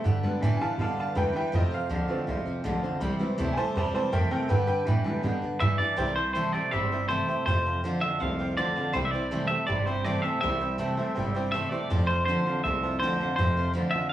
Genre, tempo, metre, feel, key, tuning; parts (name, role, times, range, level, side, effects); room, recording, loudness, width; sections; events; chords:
rockabilly; 162 BPM; 4/4; straight; C major; A4 = 439 Hz
picked steel-string acoustic guitar; accompaniment; 0.0-14.1 s; C3 to C5; -33 LUFS; equal
twangy electric guitar; riff; 0.0-14.1 s; F2 to A3; -32 LUFS; right 2 dB; phaser
upright bass; bass; 0.1-14.0 s; G1 to B2; -29 LUFS; right 1 dB
tack piano; accompaniment; 0.2-14.1 s; D3 to C6; -33 LUFS; equal
clean electric guitar; melody; 5.6-14.1 s; C5 to F5; -28 LUFS; equal
wet large studio reverb, RT60 1.0 s; band playing live in one room, studio reverb; -25 LUFS; side -12 dB against mid
0.0-6.0 A section; 6.0-14.1 B section
honky-tonk piano solo 0.0-6.0
0.1 G; 1.5 F; 3.0 C; 4.5 G; 6.0 C; 7.5 F; 8.9 C; 11.9 F